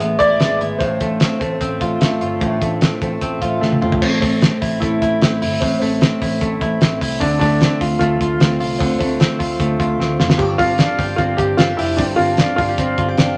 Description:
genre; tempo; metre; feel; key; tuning
jangly indie pop; 151 BPM; 4/4; straight; A minor; A4 = 440 Hz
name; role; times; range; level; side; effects
picked twelve-string acoustic guitar; accompaniment; 0.0-4.0, 10.4-13.4 s; G2 to G4; -28 LUFS; equal; none
direct-recorded clean electric guitar; arpeggios; 0.0-13.4 s; G2 to G4; -23 LUFS; equal; none
vintage muted fingered electric bass; bass; 0.0-13.3 s; F1 to D2; -27 LUFS; equal; none
cloth-damped thuddy drum kit; drums; 0.0-13.3 s; crash cymbal, hi-hat, kick drum, snare drum, splash cymbal, toms; -21 LUFS; equal; none
dark upright piano; melody; 0.2-13.3 s; C4 to D5; -22 LUFS; equal; none
room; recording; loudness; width
wet studio reverb, RT60 0.7 s; none; -17 LUFS; mono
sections
0.0-4.0 A section; 4.0-13.4 B section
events
drum fill 3.6-4.0, 10.0-10.4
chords
0.0 E7; 0.8 Dm7; 4.0 Am; 7.2 Dm7; 10.4 G7sus4

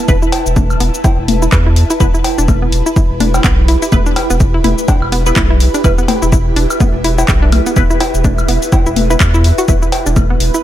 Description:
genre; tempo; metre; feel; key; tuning
minimal techno; 125 BPM; 4/4; swing 58% on 16ths; E minor; A4 = 441 Hz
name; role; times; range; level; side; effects
hollow square pluck; riff; 0.0-10.6 s; B3 to B4; -20 LUFS; equal; chorus, sidechain pumping, digital delay
airy breathy pad; texture; 0.0-10.6 s; E4 to B5; -21 LUFS; right 2 dB; chorus, sidechain pumping
flickering grainy texture; texture; 0.0-10.6 s; B3 to E5; -26 LUFS; equal; built-in reverb, sidechain pumping
filtered dub chord stab; stabs; 0.1-9.8 s; B3 to B4; -21 LUFS; equal; phaser, ping-pong delay
round analog bass; bass; 0.1-10.5 s; E1 to E2; -14 LUFS; equal; sidechain pumping
electronic kick drum; drums; 0.1-10.3 s; none; -14 LUFS; equal; none
house drum kit; drums; 0.1-10.6 s; handclaps, hi-hat, shaker; -20 LUFS; left 2 dB; none
electronic cowbell, toms and woodblock; percussion; 0.3-10.3 s; none; -19 LUFS; left 3 dB; ping-pong delay
room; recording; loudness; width
little or no reverb; none; -10 LUFS; side -12 dB against mid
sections
0.0-10.6 A section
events
none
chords
0.0 E5

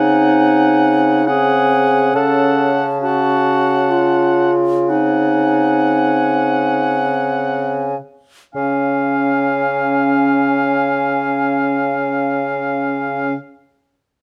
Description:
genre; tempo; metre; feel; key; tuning
classical, slow romantic movement for wind quintet; 40-72 BPM; 3/4; rubato; Db major; A4 = 440 Hz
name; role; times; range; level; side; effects
concert flute; melody; 0.0-13.3 s; Ab5 to A5; -23 LUFS; equal; none
bright oboe; second line; 0.0-13.3 s; F5 to Gb5; -24 LUFS; equal; none
mellow French horn; accompaniment; 0.0-13.3 s; C4 to Db4; -25 LUFS; equal; none
warm clarinet; accompaniment; 0.0-13.3 s; Db4 to A4; -20 LUFS; equal; none
clear bassoon; bass; 0.0-13.3 s; Db3; -22 LUFS; equal; none
room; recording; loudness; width
light reverb; none; -16 LUFS; mono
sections
0.0-8.5 A section; 8.5-12.6 B section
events
slowing down 0.8-8.5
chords
0.0 Ab7/Db; 2.1 Gbm/Db; 4.9 Ab7/Db; 8.5 Db

